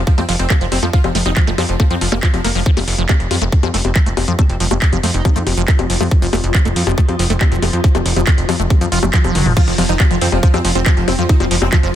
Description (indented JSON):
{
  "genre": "psychedelic trance",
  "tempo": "139 BPM",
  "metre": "4/4",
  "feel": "straight",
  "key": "F major",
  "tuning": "A4 = 441 Hz",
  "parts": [
    { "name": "plucky analog bass", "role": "bass", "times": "0.0-11.9 s", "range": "F1 to F2", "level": "-18 LUFS", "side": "equal", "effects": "none" },
    { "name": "dense compressed supersaw", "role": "melody", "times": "0.1-2.6, 9.6-11.9 s", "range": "F3 to F4", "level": "-22 LUFS", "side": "right 1 dB", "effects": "phaser, sidechain pumping, dub echo" },
    { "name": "drum and bass drum kit", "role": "drums", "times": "0.1-11.9 s", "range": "bongos, crash cymbal, handclaps, hi-hat, toms", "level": "-20 LUFS", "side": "left 3 dB", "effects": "none" },
    { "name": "electronic kick drum", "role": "drums", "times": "0.1-11.8 s", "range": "none", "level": "-12 LUFS", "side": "equal", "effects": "none" },
    { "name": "liquid acid bass", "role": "riff", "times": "0.2-11.9 s", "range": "F3 to F4", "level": "-23 LUFS", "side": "moving between left 4 dB and right 3 dB", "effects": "phaser, auto-pan, vintage 12-bit sampler grit, sidechain pumping, dub echo" },
    { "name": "swarming drone", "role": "sustained chords", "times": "4.4-11.9 s", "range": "F3 to F4", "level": "-25 LUFS", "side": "equal", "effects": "built-in reverb, sidechain pumping" },
    { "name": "metallic wobble bass", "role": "second line", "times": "3.7-5.5, 10.6-11.8 s", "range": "A3 to Eb4", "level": "-34 LUFS", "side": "right 3 dB", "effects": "none" }
  ],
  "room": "digital ambience",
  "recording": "dense, heavily limited modern master",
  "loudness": "-12 LUFS",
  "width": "side -11 dB against mid",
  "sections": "0.0-9.6 A section; 9.6-11.9 B section",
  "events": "drum fill 9.4; drop 9.6-11.9",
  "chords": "0.0 N.C.; 9.6 F5",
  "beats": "0.07 0.50 | 0.93 1.37 1.80 2.23 | 2.66 3.09 3.52 3.96 | 4.39 4.82 5.25 5.68 | 6.11 6.55 6.98 7.41 | 7.84 8.27 8.70 9.13 | 9.57 10.00 10.43 10.86 | 11.29 11.72"
}